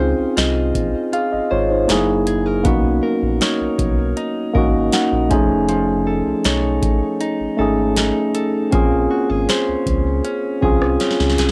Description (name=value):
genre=contemporary R&B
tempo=79 BPM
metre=4/4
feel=straight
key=unclear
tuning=A4 = 440 Hz
part: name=mellow tine electric piano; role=accompaniment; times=0.0-11.5 s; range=A3 to G#5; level=-20 LUFS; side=equal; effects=cassette tape
part: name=direct-recorded clean electric guitar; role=arpeggios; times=0.0-11.5 s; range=F3 to Eb5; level=-27 LUFS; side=equal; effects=cassette tape, tape echo
part: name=round analog bass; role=bass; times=0.0-11.5 s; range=F1 to Db2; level=-25 LUFS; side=equal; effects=none
part: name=booming analog drum machine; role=drums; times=0.4-11.5 s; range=hi-hat, kick drum, rim click, snare drum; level=-22 LUFS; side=equal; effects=cassette tape
room=light reverb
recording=home recording on cassette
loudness=-18 LUFS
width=mono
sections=0.0-11.5 A section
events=tine electric piano fill 4.2-5.7; drum fill 11.0-11.5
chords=0.0 Dbmaj9; 1.9 Gb13; 2.7 Cbmaj9; 5.3 F7alt; 8.7 Bbm9